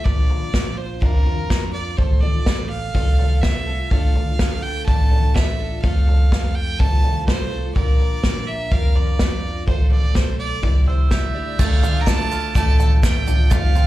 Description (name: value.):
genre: indie folk with a building arrangement.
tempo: 125 BPM.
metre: 4/4.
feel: straight.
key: D minor.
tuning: A4 = 440 Hz.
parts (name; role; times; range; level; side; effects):
clear fiddle; melody; 0.0-13.9 s; Bb4 to Bb5; -28 LUFS; right 3 dB; slapback echo.
picked plugged-in twelve-string acoustic guitar; accompaniment; 0.0-13.9 s; F2 to D5; -30 LUFS; left 2 dB; slapback echo.
fingered electric bass; bass; 0.1-13.9 s; A1 to F2; -27 LUFS; equal; none.
unplugged drum kit; drums; 0.1-13.9 s; crash cymbal, kick drum, snare drum, toms; -17 LUFS; equal; none.
glockenspiel with soft plastic mallets; second line; 10.9-13.9 s; E6 to D7; -29 LUFS; right 6 dB; slapback echo.
bluegrass banjo; arpeggios; 11.6-13.9 s; A3 to A4; -31 LUFS; right 10 dB; slapback echo.
tube shaker; percussion; 11.6-13.9 s; none; -41 LUFS; left 1 dB; none.
room: little or no reverb.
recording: live gig heard through the venue's PA, club reverb.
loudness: -16 LUFS.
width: side -15 dB against mid.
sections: 0.0-11.6 A section; 11.6-13.9 B section.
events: none.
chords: 0.1 Bb; 2.0 F/A; 3.9 Dm; 5.8 F; 7.8 Bb; 9.7 F/A; 10.6 Cadd9; 11.6 Dm.